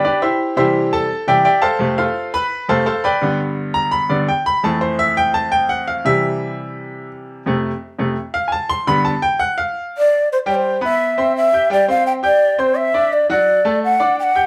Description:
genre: latin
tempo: 170 BPM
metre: 4/4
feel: straight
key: C major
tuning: A4 = 441 Hz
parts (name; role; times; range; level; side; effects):
- bright baby grand piano; accompaniment; 0.0-14.5 s; F2 to G6; -19 LUFS; equal; none
- shakuhachi; melody; 10.0-14.5 s; C5 to G5; -17 LUFS; equal; none
room: wet studio reverb, RT60 0.8 s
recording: band playing live in one room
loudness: -17 LUFS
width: mono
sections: 0.0-10.3 A section; 10.3-14.5 B section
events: grand piano solo 0.0-10.3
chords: 0.4 Cadd9; 1.8 F; 3.2 G; 4.6 Fmaj7; 6.1 C; 7.5 F; 8.9 G; 10.3 Cmaj7; 11.7 Gsus4; 13.1 D

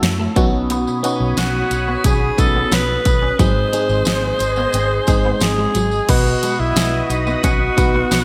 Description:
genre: 1980s-style pop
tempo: 89 BPM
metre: 4/4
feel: straight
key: unclear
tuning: A4 = 440 Hz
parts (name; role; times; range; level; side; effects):
- FM electric piano; accompaniment; 0.0-8.2 s; G#2 to D#5; -25 LUFS; equal; chorus
- sweeping resonant pad; sustained chords; 0.0-8.2 s; F#4 to E6; -28 LUFS; equal; chorus
- clean electric guitar; riff; 0.0-8.2 s; F#3 to C#4; -30 LUFS; equal; ensemble chorus
- vintage muted fingered electric bass; bass; 0.0-8.2 s; G#1 to F#2; -24 LUFS; equal; none
- pop drum kit; drums; 0.0-8.2 s; crash cymbal, hi-hat, kick drum, snare drum, tambourine; -21 LUFS; equal; gated reverb
- tambourine; percussion; 0.7-8.2 s; none; -35 LUFS; equal; none
- raspy alto saxophone; melody; 1.4-8.2 s; D#4 to B#4; -22 LUFS; equal; delay
room: moderate plate reverb, RT60 1.9 s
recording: bright 1980s-style digital production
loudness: -17 LUFS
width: mono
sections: 0.0-6.1 A section; 6.1-8.2 B section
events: none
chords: 0.4 Badd9; 3.4 G#; 6.1 B

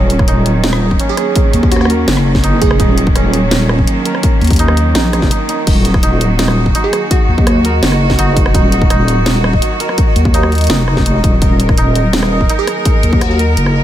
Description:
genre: half-time drum and bass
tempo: 167 BPM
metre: 4/4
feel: half-time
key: Eb minor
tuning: A4 = 439 Hz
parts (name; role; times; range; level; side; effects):
- rich symphonic cello section; sustained chords; 0.0-13.8 s; Eb3 to Bb4; -19 LUFS; right 2 dB; sidechain pumping
- santur; arpeggios; 0.0-13.8 s; Db4 to Bb4; -21 LUFS; right 2 dB; vintage 12-bit sampler grit, ping-pong delay
- deep soft wobble bass; bass; 0.0-13.8 s; Eb1 to Eb2; -13 LUFS; equal; chorus, tube saturation
- drum and bass drum kit; drums; 0.1-13.7 s; crash cymbal, hi-hat, rim click, snare drum; -19 LUFS; equal; none
- electronic kick drum; drums; 0.2-13.2 s; none; -13 LUFS; equal; none
- glassy wavetable pluck; melody; 1.1-3.0, 6.8-8.3, 12.6-13.4 s; Gb4 to Ab4; -21 LUFS; right 2 dB; chorus, ping-pong delay
- pulsing gated texture; texture; 6.3-13.8 s; Eb5; -24 LUFS; right 3 dB; chorus, built-in reverb
room: little or no reverb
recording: none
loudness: -10 LUFS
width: side -12 dB against mid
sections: 0.0-13.8 A section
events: break 5.3-5.7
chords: 0.0 Ebm

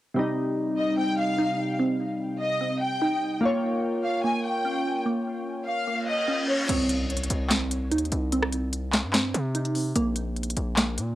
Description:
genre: hip hop, trap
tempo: 147 BPM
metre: 4/4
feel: half-time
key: C phrygian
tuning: A4 = 440 Hz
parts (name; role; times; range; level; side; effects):
- glassy digital keys; accompaniment; 0.1-6.7 s; C3 to Db5; -28 LUFS; left 1 dB; chorus, cassette tape
- glassy wavetable pluck; arpeggios; 0.2-11.2 s; Bb3 to Eb4; -29 LUFS; right 2 dB; chorus, cassette tape, analog delay
- warm symphonic violin section; second line; 0.8-6.7 s; Db5 to Ab5; -29 LUFS; equal; cassette tape, analog delay
- reverse cymbal and impact; sound effects; 6.0-8.3 s; none; -34 LUFS; left 1 dB; none
- distorted 808-style bass; bass; 6.7-11.2 s; Bb1 to C3; -29 LUFS; equal; distortion
- trap drum kit; drums; 6.7-11.1 s; crash cymbal, handclaps, hi-hat, rim click, snare drum; -26 LUFS; equal; none
room: light reverb, digital ambience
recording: home recording on cassette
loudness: -24 LUFS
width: side -15 dB against mid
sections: 0.2-6.7 A section; 6.7-11.2 B section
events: reverse cymbal 6.0-6.7; impact 6.7-8.3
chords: 0.2 Cm; 3.4 Bbm; 6.7 Cm; 10.0 N.C.

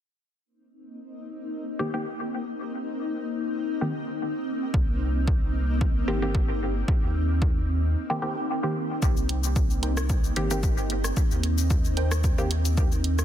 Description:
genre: dub techno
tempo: 112 BPM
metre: 4/4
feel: swing 54% on 16ths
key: C minor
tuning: A4 = 442 Hz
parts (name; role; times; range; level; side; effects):
- granular cloud pad; sustained chords; 0.9-13.2 s; Bb3 to Eb4; -31 LUFS; equal; built-in reverb, sidechain pumping
- filtered dub chord stab; stabs; 1.8-12.5 s; Eb3 to G4; -31 LUFS; equal; chorus, phaser, vintage 12-bit sampler grit, sidechain pumping, dub echo
- warm sub bass; bass; 4.7-13.2 s; G1 to Eb2; -26 LUFS; equal; tube saturation, sidechain pumping
- electronic kick drum; drums; 4.7-12.9 s; none; -24 LUFS; equal; none
- punchy analog drum machine; drums; 9.0-13.2 s; cabasa, hi-hat, rim click; -34 LUFS; left 1 dB; soft clipping on snare
- filtered dub chord stab; riff; 9.8-12.1 s; Eb4 to G5; -38 LUFS; right 4 dB; chorus, sidechain pumping, dub echo
room: light reverb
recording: dense, heavily limited modern master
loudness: -23 LUFS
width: side -11 dB against mid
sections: 0.5-9.0 A section; 9.0-13.2 B section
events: break 8.0-9.0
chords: 0.5 Cm7

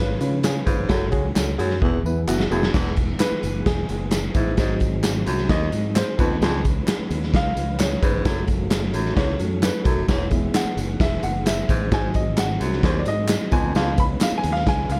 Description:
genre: uptempo 1960s-style soul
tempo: 131 BPM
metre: 4/4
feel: straight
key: E major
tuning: A4 = 440 Hz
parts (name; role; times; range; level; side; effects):
- dark upright piano; accompaniment; 0.0-15.0 s; E#3 to B5; -29 LUFS; equal; none
- mellow tonewheel organ; sustained chords; 0.0-15.0 s; E3 to B4; -36 LUFS; equal; none
- fingered electric bass; bass; 0.0-15.0 s; E1 to C#3; -28 LUFS; equal; none
- raw garage drum kit; drums; 0.2-15.0 s; crash cymbal, hi-hat, kick drum, snare drum; -24 LUFS; equal; none
- tambourine and handclaps; percussion; 0.2-15.0 s; none; -37 LUFS; equal; none
- raspy baritone saxophone; riff; 0.7-13.9 s; D#2 to G#2; -30 LUFS; equal; none
room: light reverb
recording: dark, warm production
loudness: -22 LUFS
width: mono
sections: 0.0-2.7 A section; 2.7-15.0 B section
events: drum fill 1.8-2.7; upright piano solo 2.7-15.0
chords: 0.0 C#7; 0.9 F#m; 1.8 E; 4.6 G#7; 6.2 C#7; 8.2 F#m; 10.1 E; 11.9 G#7; 13.5 C#7

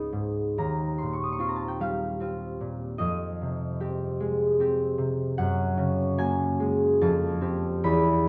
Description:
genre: classical, solo harp piece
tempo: 75 BPM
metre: 3/4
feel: rubato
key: unclear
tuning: A4 = 439 Hz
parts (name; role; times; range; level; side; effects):
- concert harp; solo; 0.0-8.3 s; C#2 to D#6; -27 LUFS; equal; none
room: moderate recital hall reverb, RT60 1.7 s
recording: worn, warbling old tape, cassette tape, warbly pitch drift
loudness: -27 LUFS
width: mono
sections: 0.0-8.3 A section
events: none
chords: 0.0 C#sus2; 0.6 D#13; 3.0 Fm9; 5.4 F#add9; 7.0 Fadd9

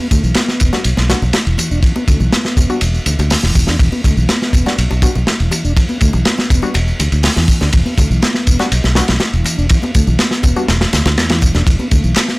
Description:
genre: breakbeat, breaks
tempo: 122 BPM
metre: 4/4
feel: straight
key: E minor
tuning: A4 = 440 Hz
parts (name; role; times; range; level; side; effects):
- mellow tonewheel organ; riff; 0.0-12.4 s; E3 to D4; -20 LUFS; equal; fast rotary speaker, overdrive, low-pass filter, tape echo
- congas and bongos; percussion; 0.0-12.3 s; none; -28 LUFS; left 2 dB; none
- fingered electric bass; bass; 0.1-12.1 s; E1 to E2; -15 LUFS; equal; none
- crunchy breakbeat drum kit; drums; 0.1-12.4 s; hi-hat, kick drum, ride cymbal, snare drum; -14 LUFS; equal; none
- electronic tambourine and handclaps; drums; 0.1-12.4 s; none; -26 LUFS; left 1 dB; none
- filtered dub chord stab; stabs; 0.7-10.6 s; G3 to F#4; -22 LUFS; left 2 dB; chorus, tape echo
room: little or no reverb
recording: dry, gritty hardware recording, transformer saturation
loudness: -11 LUFS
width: side -24 dB against mid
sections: 0.0-12.4 A section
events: none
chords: 0.0 E7(no3)

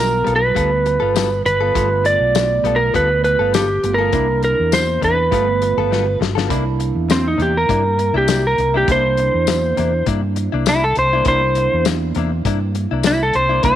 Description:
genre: straight-eighth soul blues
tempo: 101 BPM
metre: 4/4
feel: straight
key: C mixolydian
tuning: A4 = 440 Hz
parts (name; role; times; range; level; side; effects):
- electric slide guitar; melody; 0.0-13.8 s; C4 to D5; -16 LUFS; right 1 dB; slapback echo
- bell-like tine electric piano; accompaniment; 0.0-13.8 s; G3 to F4; -26 LUFS; right 12 dB; phaser
- mellow fretless electric bass; bass; 0.0-13.8 s; G1 to G2; -21 LUFS; equal; none
- direct-recorded clean electric guitar; stabs; 0.2-13.8 s; C3 to A4; -25 LUFS; left 10 dB; none
- warm soul drum kit; drums; 0.3-13.8 s; hi-hat, kick drum, snare drum, tambourine; -22 LUFS; left 5 dB; none
room: small room ambience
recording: 1960s-style stereo with parts hard left and right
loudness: -14 LUFS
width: side -11 dB against mid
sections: 0.0-6.5 A section; 6.5-13.8 B section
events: drum fill 5.9-6.5; electric slide guitar solo 6.5-13.8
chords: 0.0 G9; 4.1 C9; 5.3 G9; 6.5 C9

